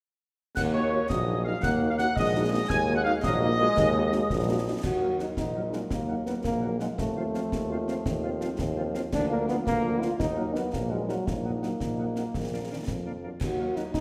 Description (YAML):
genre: military-style march for wind band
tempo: 112 BPM (dotted quarters)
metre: 6/8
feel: straight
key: Eb minor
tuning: A4 = 440 Hz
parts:
  - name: mellow trumpet section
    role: melody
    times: 0.6-13.8 s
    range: F4 to Ab5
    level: -35 LUFS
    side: equal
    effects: none
  - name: mellow hollow piccolo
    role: second line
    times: 0.6-4.8 s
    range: Db6 to Ab6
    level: -36 LUFS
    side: equal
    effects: none
  - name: warm woodwind section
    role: second line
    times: 0.6-13.8 s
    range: Bb4 to Ab5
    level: -37 LUFS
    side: equal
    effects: none
  - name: dark trombone section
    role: sustained chords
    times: 0.6-14.0 s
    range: Eb3 to Eb4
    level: -37 LUFS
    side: equal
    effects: none
  - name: clear tuba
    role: bass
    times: 0.6-14.0 s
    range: Bb1 to F2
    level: -33 LUFS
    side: equal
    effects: none
  - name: concert snare drum, clash cymbals and concert bass drum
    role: drums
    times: 0.6-14.0 s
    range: none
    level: -37 LUFS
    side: equal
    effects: none
  - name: dark French horn section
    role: accompaniment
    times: 0.7-13.8 s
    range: F3 to Gb4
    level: -38 LUFS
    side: equal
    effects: none
  - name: clear euphonium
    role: second line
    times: 4.8-14.0 s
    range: Gb3 to Gb4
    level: -33 LUFS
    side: equal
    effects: none
room: wet scoring stage reverb, RT60 1.4 s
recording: none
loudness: -28 LUFS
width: mono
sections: 0.6-4.8 A section; 4.8-14.0 B section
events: none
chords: 0.6 Ebm; 7.0 F7/Eb; 9.1 Bb/D; 10.2 Ebm/Bb; 12.3 Bb; 13.4 Ebm